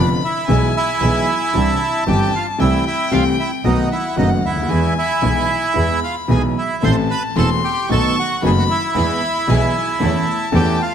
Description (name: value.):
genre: tango.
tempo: 114 BPM.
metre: 4/4.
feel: rubato.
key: A minor.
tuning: A4 = 440 Hz.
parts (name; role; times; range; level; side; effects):
bandoneon; melody; 0.0-10.9 s; D#4 to C6; -20 LUFS; right 3 dB; none.
dark violin; second line; 0.0-10.9 s; F#5 to C#6; -23 LUFS; left 6 dB; none.
clear concert grand piano; accompaniment; 0.0-10.8 s; E1 to A4; -20 LUFS; left 1 dB; none.
clear double bass; bass; 0.0-10.8 s; E1 to E2; -20 LUFS; right 2 dB; none.
warm studio string section; stabs; 6.8-10.8 s; A3 to A4; -28 LUFS; equal; none.
room: light reverb.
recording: close, detailed microphones.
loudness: -15 LUFS.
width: side -8 dB against mid.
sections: 0.0-10.9 A section.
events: none.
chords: 0.5 E/B; 1.5 Cadd9; 2.6 Am7/C; 3.6 B7; 4.7 E; 6.8 Am; 7.9 B7; 9.0 E; 10.0 A/E.